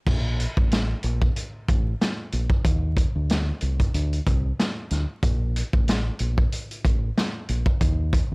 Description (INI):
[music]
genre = hip hop, boom-bap hip-hop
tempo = 93 BPM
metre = 4/4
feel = swing 56% on 16ths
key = unclear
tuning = A4 = 442 Hz
[part]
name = deep dub fingered electric bass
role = bass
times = 0.1-8.3 s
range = A1 to Eb2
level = -24 LUFS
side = equal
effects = none
[part]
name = vintage drum kit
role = drums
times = 0.1-8.3 s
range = crash cymbal, hi-hat, kick drum, snare drum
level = -23 LUFS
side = equal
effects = vintage 12-bit sampler grit
[sound]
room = little or no reverb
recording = dry, gritty hardware recording, vinyl crackle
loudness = -21 LUFS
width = side -37 dB against mid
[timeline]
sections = 0.1-8.3 A section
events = none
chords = none